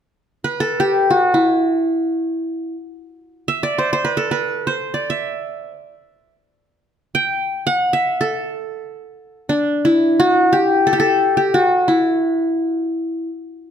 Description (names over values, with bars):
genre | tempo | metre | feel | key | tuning
turkish | free time | none | none | A makam huseyni | A4 = 440 Hz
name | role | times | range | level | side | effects
qanun | solo | 0.4-13.3 s | D4 to G5 | -16 LUFS | equal | none
room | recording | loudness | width
light reverb | close, detailed microphones | -16 LUFS | side -8 dB against mid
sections
0.0-9.5 A section; 9.5-13.7 B section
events
none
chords
none